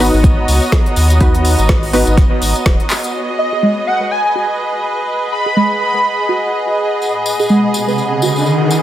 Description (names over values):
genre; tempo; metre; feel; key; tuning
deep house; 124 BPM; 4/4; swing 57% on 16ths; G# minor; A4 = 441 Hz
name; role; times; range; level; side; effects
warm analog pad; sustained chords; 0.0-8.8 s; G#4 to D#6; -22 LUFS; equal; chorus, sidechain pumping
filtered dub chord stab; stabs; 0.0-3.1 s; B3 to B4; -18 LUFS; left 1 dB; chorus, sidechain pumping, analog delay
round analog bass; bass; 0.0-2.8 s; D#1 to D#2; -14 LUFS; equal; sidechain pumping
deep house drum kit; drums; 0.0-3.1 s; handclaps, hi-hat, snare drum; -20 LUFS; equal; studio reverb
tambourine; percussion; 0.0-3.1, 7.0-8.8 s; none; -25 LUFS; left 2 dB; none
clear symphonic string section; texture; 0.0-8.8 s; B3 to D#5; -20 LUFS; right 1 dB; sidechain pumping
electronic kick drum; drums; 0.2-2.8 s; none; -12 LUFS; equal; studio reverb
airy dreamy lead; melody; 3.4-6.3 s; D#5 to B5; -17 LUFS; equal; chorus, tape echo
soft round pluck; arpeggios; 3.5-8.8 s; G#3 to G#5; -17 LUFS; right 1 dB; chorus, sidechain pumping, analog delay
riser; sound effects; 7.6-8.8 s; none; -17 LUFS; equal; none
room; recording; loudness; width
moderate lush hall reverb, RT60 2.0 s; dense, heavily limited modern master; -12 LUFS; side -12 dB against mid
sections
0.0-3.1 A section; 3.1-8.8 B section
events
drum fill 2.9; filter sweep on synth arpeggio sound 3.1-8.8; riser 7.6-8.8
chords
0.0 G#m9; 3.1 G#m7